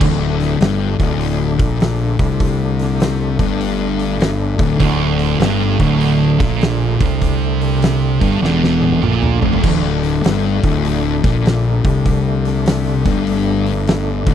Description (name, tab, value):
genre	stoner and doom metal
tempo	99 BPM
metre	4/4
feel	swing 65% on 8ths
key	unclear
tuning	A4 = 441 Hz
part	tonewheel organ	sustained chords	0.0-14.3 s	D3 to D4	-25 LUFS	right 1 dB	slow rotary speaker, overdrive, chorus vibrato
part	thick fuzz guitar	riff	0.0-14.3 s	D2 to C3	-18 LUFS	left 9 dB	distortion
part	fuzz fingered electric bass	bass	0.0-14.3 s	D1 to C2	-20 LUFS	right 1 dB	overdrive
part	oversized low-tuned drum kit	drums	0.0-14.3 s	crash cymbal, hi-hat, kick drum, snare drum, toms	-19 LUFS	equal	none
part	thick fuzz guitar	riff	4.8-9.6 s	D2 to C3	-17 LUFS	right 10 dB	distortion
room	studio reverb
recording	dry, close 1970s-style studio recording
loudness	-13 LUFS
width	side -9 dB against mid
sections	0.0-9.6 A section; 9.6-14.3 A section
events	drum fill 8.4-9.6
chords	0.0 D5